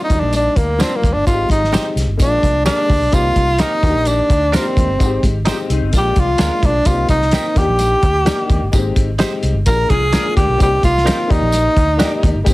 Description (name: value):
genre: uptempo 1960s-style soul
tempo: 129 BPM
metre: 4/4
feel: straight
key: unclear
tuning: A4 = 441 Hz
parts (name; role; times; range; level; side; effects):
- breathy tenor saxophone; melody; 0.0-12.5 s; Bb3 to Bb4; -16 LUFS; equal; slapback echo
- warm upright piano; accompaniment; 0.0-12.5 s; Eb3 to D5; -24 LUFS; left 4 dB; none
- vintage muted fingered electric bass; bass; 0.1-12.5 s; G1 to Eb2; -19 LUFS; equal; none
- cloth-damped thuddy drum kit; drums; 0.1-12.5 s; hi-hat, kick drum, snare drum; -17 LUFS; equal; none
- congas; percussion; 0.2-12.3 s; none; -29 LUFS; right 1 dB; none
- tambourine; percussion; 0.3-12.5 s; none; -32 LUFS; right 4 dB; none
- direct-recorded clean electric guitar; stabs; 0.8-12.1 s; Bb3 to C5; -24 LUFS; right 5 dB; lush chorus
- electric guitar through a small old amp; riff; 5.5-6.6, 9.9-10.8 s; Ab3 to Ab4; -26 LUFS; left 7 dB; ensemble chorus
room: light reverb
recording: heavily compressed radio sound, multiband compression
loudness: -13 LUFS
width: side -19 dB against mid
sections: 0.0-12.5 A section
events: tenor saxophone solo 0.0-12.5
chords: 0.1 Ebmaj7; 1.3 Abmaj7; 2.2 Bb7; 3.1 Cm7; 3.8 Ebmaj7; 5.0 Abmaj7; 5.9 Bb7; 6.9 Cm7; 7.6 Ebmaj7; 8.7 Abmaj7; 9.7 Bb7; 10.6 Cm7; 11.3 Ebmaj7